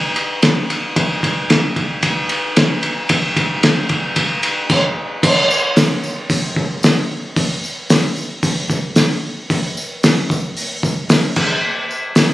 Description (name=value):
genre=rock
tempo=113 BPM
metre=4/4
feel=straight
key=none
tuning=none
part: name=cloth-damped thuddy drum kit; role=drums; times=0.2-12.3 s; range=crash cymbal, hi-hat, kick drum, ride cymbal, snare drum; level=-14 LUFS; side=equal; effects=none
part: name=tambourine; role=percussion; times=5.5-12.3 s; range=none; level=-29 LUFS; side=left 1 dB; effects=none
room=moderate echo chamber reverb, RT60 2.4 s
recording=recorded on a phone in the room, club reverb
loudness=-14 LUFS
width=side -16 dB against mid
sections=0.0-5.2 A section; 5.2-12.3 B section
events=none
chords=none